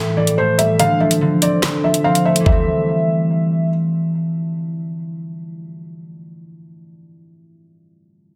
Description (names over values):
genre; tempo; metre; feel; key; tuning
hip hop, drill; 144 BPM; 4/4; half-time; A minor; A4 = 441 Hz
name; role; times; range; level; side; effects
dark concert grand piano; melody; 0.0-3.7 s; C5 to F5; -22 LUFS; equal; delay
concert harp; accompaniment; 0.0-7.3 s; A2 to C4; -20 LUFS; equal; none
drill drum kit; drums; 0.3-2.6 s; handclaps, hi-hat, kick drum, snare drum, toms; -21 LUFS; equal; none
room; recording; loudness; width
light reverb, studio reverb; dense, heavily limited modern master; -17 LUFS; mono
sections
0.0-2.5 A section; 2.5-5.8 B section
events
none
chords
0.0 A5; 0.8 Dm7; 2.5 Am7